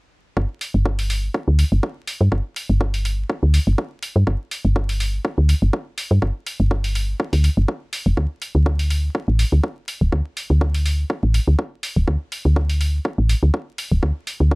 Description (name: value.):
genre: deep house.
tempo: 123 BPM.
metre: 4/4.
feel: swing 54% on 16ths.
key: unclear.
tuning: A4 = 438 Hz.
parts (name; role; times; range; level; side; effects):
woody FM bass; bass; 0.4-14.6 s; D1 to G2; -16 LUFS; equal; sidechain pumping.
electronic kick drum; drums; 0.4-14.6 s; none; -23 LUFS; equal; high-pass filter on kick, high-pass filter on room.
electronic hi-hat; drums; 0.6-14.4 s; none; -28 LUFS; equal; none.
room: little or no reverb.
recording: vinyl crackle.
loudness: -18 LUFS.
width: side -31 dB against mid.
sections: 0.4-14.6 A section.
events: filter sweep on FM bass 0.4-14.6.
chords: none.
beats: | 0.37 0.86 1.34 1.83 | 2.32 2.81 3.29 3.78 | 4.27 4.76 5.25 5.73 | 6.22 6.71 7.20 7.68 | 8.17 8.66 9.15 9.64 | 10.12 10.61 11.10 11.59 | 12.07 12.56 13.05 13.54 | 14.03 14.51.